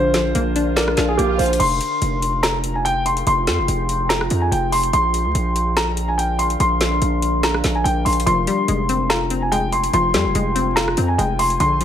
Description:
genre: hip hop, trap.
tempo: 144 BPM.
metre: 4/4.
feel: half-time.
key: F dorian.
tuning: A4 = 439 Hz.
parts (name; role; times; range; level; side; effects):
dark baby grand piano; melody; 0.0-11.8 s; G4 to C6; -20 LUFS; equal; digital delay.
hollow square pluck; accompaniment; 0.0-1.6, 8.3-11.8 s; D3 to D5; -23 LUFS; left 4 dB; chorus.
deep dark ambient pad; sustained chords; 0.0-11.8 s; D4 to Ab5; -27 LUFS; equal; chorus, built-in reverb.
distorted 808-style bass; bass; 0.0-11.8 s; F1 to F2; -22 LUFS; equal; distortion.
swell; sound effects; 0.3-1.6 s; none; -29 LUFS; right 4 dB; none.
trap drum kit; drums; 0.1-11.8 s; crash cymbal, hi-hat, rim click, snare drum; -24 LUFS; equal; none.
room: light reverb, digital ambience.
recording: vinyl crackle.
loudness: -16 LUFS.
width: side -9 dB against mid.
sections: 0.0-1.6 A section; 1.6-11.8 B section.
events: swell 0.3-1.6.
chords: 0.0 Bb; 1.6 Fmadd9; 4.9 Bb; 8.3 Fmadd9.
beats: 0.35 0.77 1.18 | 1.60 2.02 2.43 2.85 | 3.27 3.68 4.10 4.52 | 4.93 5.35 5.77 6.18 | 6.60 7.02 7.43 7.85 | 8.27 8.68 9.10 9.52 | 9.93 10.35 10.77 11.18 | 11.60.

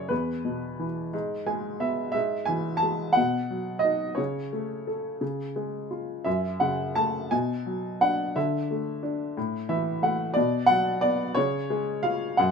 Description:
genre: classical, lyrical solo piano.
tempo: 59 BPM (dotted quarters).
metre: 6/8.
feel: rubato.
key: unclear.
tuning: A4 = 440 Hz.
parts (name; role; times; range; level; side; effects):
warm upright piano; solo; 0.0-12.5 s; E2 to A5; -24 LUFS; equal; none.
room: light reverb.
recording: minimal, uncompressed stereo recording.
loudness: -25 LUFS.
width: side -5 dB against mid.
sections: 0.0-12.5 A section.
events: upright piano fill 1.1-2.1, 9.4-10.4.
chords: 0.1 E5; 1.1 G#m; 2.1 E/G#; 3.2 B; 4.2 A/C#; 5.2 C#; 6.3 F#m; 7.3 Bm; 8.4 Dsus2; 9.4 A5; 10.4 B5; 11.4 C#.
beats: | 0.11 1.13 | 2.14 3.17 | 4.19 5.22 | 6.26 7.32 | 8.36 9.37 | 10.36 11.36 | 12.38.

